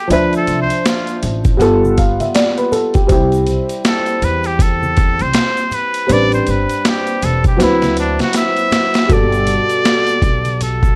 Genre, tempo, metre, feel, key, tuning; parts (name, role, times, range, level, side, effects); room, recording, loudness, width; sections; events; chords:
hip hop, jazz-hop; 80 BPM; 4/4; swing 60% on 16ths; G major; A4 = 441 Hz
trumpet with straight mute; melody; 0.0-11.0 s; D4 to E5; -20 LUFS; equal
dark upright piano; accompaniment; 0.0-11.0 s; B2 to F5; -19 LUFS; equal
upright bass; bass; 0.1-11.0 s; E1 to E2; -22 LUFS; equal; tube saturation
boom bap sampler-style drum kit; drums; 0.1-11.0 s; hi-hat, kick drum, snare drum; -19 LUFS; equal; vintage 12-bit sampler grit
egg shaker and congas; percussion; 0.1-11.0 s; -33 LUFS; equal
studio reverb; dry, gritty hardware recording; -15 LUFS; mono
0.0-9.1 A section; 9.1-11.0 B section
muted trumpet solo 0.0-9.1; drum fill 7.6-9.1
0.1 Dm9; 1.6 G9; 3.1 C; 6.1 Am11; 7.6 D13; 9.1 Gmaj9